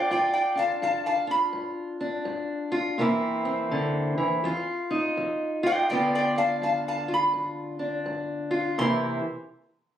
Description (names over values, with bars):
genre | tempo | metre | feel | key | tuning
acoustic country blues, solo or duo | 83 BPM | 4/4 | swing 62% on 8ths | C major | A4 = 440 Hz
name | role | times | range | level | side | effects
metal-body resonator slide guitar | melody | 0.0-9.2 s | D5 to C6 | -24 LUFS | equal | none
fingerpicked steel-string acoustic guitar | accompaniment | 0.0-9.2 s | F2 to F4 | -26 LUFS | equal | none
room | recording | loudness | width
moderate studio reverb, RT60 0.6 s | recorded on a phone in the room, studio reverb | -24 LUFS | side -10 dB against mid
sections
0.0-8.8 A section; 8.8-10.0 B section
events
none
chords
0.0 G5; 3.0 C7; 4.4 Ebsus2/F; 5.9 G7; 8.8 C7